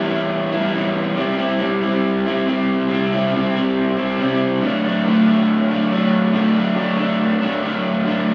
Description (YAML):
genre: rock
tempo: 139 BPM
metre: 4/4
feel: straight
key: unclear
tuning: A4 = 441 Hz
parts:
  - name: raw garage guitar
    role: solo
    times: 0.0-8.3 s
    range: C3 to E4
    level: -18 LUFS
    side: equal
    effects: overdrive
room: wet stone room reverb, RT60 1.1 s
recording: rough rehearsal-room recording, cassette tape, small room reverb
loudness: -18 LUFS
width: mono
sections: 0.0-8.1 A section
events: none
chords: 0.0 Em; 1.2 C; 4.6 D